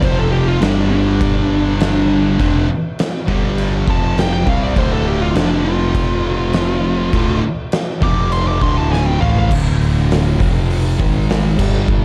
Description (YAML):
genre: stoner and doom metal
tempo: 101 BPM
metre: 4/4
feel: straight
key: unclear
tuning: A4 = 440 Hz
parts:
  - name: fuzz lead guitar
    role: melody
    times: 0.0-9.5 s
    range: D4 to D6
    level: -23 LUFS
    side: equal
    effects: distortion, slapback echo
  - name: distorted electric guitar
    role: riff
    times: 0.0-9.5 s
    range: D2 to C4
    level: -28 LUFS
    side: equal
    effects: overdrive
  - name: thick fuzz guitar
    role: riff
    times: 0.0-12.0 s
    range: D2 to C4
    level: -24 LUFS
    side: equal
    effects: distortion
  - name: thick fuzz guitar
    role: riff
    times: 0.0-12.0 s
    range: D2 to C4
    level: -22 LUFS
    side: equal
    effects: distortion
  - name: growling picked electric bass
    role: bass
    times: 0.0-12.0 s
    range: D1 to C2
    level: -22 LUFS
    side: equal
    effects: overdrive
  - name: oversized low-tuned drum kit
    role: drums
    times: 0.0-12.0 s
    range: crash cymbal, hi-hat, kick drum, snare drum, toms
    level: -22 LUFS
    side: equal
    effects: none
room: small room reverb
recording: dark, warm production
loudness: -16 LUFS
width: mono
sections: 0.0-9.5 A section; 9.5-12.0 B section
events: lead electric guitar solo 0.0-9.5; drum fill 8.9-9.5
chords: 0.0 F5; 0.6 G5; 2.4 F5; 3.3 G5; 3.9 F5; 4.8 D5; 5.3 F5; 7.1 D5; 8.0 F5; 8.6 D5; 10.4 F5; 11.0 G#5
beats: | 0.03 0.62 1.21 1.80 | 2.39 2.98 3.57 4.16 | 4.75 5.35 5.94 6.54 | 7.13 7.72 8.32 8.91 | 9.51 10.10 10.70 11.29 | 11.89